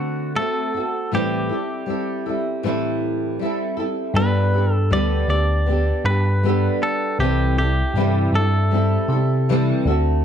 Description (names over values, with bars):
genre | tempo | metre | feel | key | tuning
acoustic pop | 79 BPM | 4/4 | swing 60% on 16ths | G major | A4 = 441 Hz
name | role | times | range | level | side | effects
direct-recorded clean electric guitar | melody | 0.0-9.8 s | F#4 to D5 | -25 LUFS | equal | spring reverb
flamenco guitar | accompaniment | 0.0-10.2 s | A2 to A4 | -22 LUFS | equal | double-tracked left and right
bell-like tine electric piano | bass | 4.1-10.2 s | C2 to C3 | -19 LUFS | equal | medium stereo tremolo
room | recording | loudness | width
little or no reverb | dark, warm production | -18 LUFS | side -8 dB against mid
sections
0.0-4.2 A section; 4.2-10.2 B section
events
none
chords
0.0 D7; 1.1 Am7; 4.2 Gadd9; 7.2 C6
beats
0.35 | 1.11 1.88 2.63 3.40 | 4.16 4.92 5.68 6.44 | 7.20 7.96 8.72 9.48 | 10.24